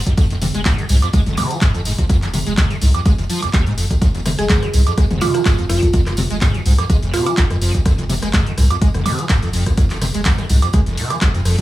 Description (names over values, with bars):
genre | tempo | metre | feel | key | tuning
acid house | 125 BPM | 4/4 | swing 54% on 16ths | F minor pentatonic | A4 = 441 Hz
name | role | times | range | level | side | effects
saturated sub bass | bass | 0.0-11.5 s | F1 to C2 | -19 LUFS | equal | tube saturation, sidechain pumping
liquid acid bass | riff | 0.1-11.6 s | F1 to Ab3 | -20 LUFS | equal | overdrive, ensemble chorus, sidechain pumping
electronic kick drum | drums | 0.1-11.6 s | none | -16 LUFS | equal | none
punchy analog drum machine | drums | 0.1-11.6 s | handclaps, hi-hat, rim click, toms, woodblock | -22 LUFS | equal | none
tambourine | percussion | 0.1-11.6 s | none | -31 LUFS | right 2 dB | none
mallet-like synth pluck | melody | 4.4-7.3 s | F4 to Ab4 | -22 LUFS | right 2 dB | chorus, tape echo
room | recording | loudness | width
digital ambience | small room ambience | -14 LUFS | side -15 dB against mid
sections
0.0-11.6 A section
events
none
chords
0.0 Fm